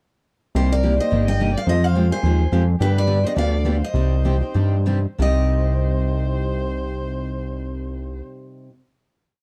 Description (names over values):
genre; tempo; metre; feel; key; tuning
acoustic string swing (jazz manouche); 181-214 BPM; 4/4; swing 56% on 8ths; C minor; A4 = 440 Hz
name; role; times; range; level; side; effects
picked steel-string acoustic guitar; accompaniment; 0.5-8.7 s; C3 to G4; -32 LUFS; equal; none
fat analog bass; bass; 0.5-8.2 s; G1 to G2; -22 LUFS; equal; none
picked steel-string acoustic guitar; melody; 0.6-8.2 s; B4 to G5; -28 LUFS; equal; none
warm violin; second line; 0.6-8.2 s; G4 to Eb5; -34 LUFS; equal; none
picked steel-string acoustic guitar; accompaniment; 0.6-8.7 s; C3 to G4; -32 LUFS; equal; none
room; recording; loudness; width
light reverb; dark, warm production; -20 LUFS; mono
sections
0.5-5.2 A section; 5.2-7.8 final chord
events
slowing down 2.8-5.2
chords
0.5 Cm7; 1.7 Fmadd9; 2.8 G; 3.9 Cm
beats
| 0.55 0.83 1.11 1.39 | 1.67 1.95 2.23 2.51 | 2.79 3.08 3.36 3.65 | 3.94 4.24 4.55 4.86 | 5.19 5.52 5.85 6.18 | 6.52 6.85 7.18 7.51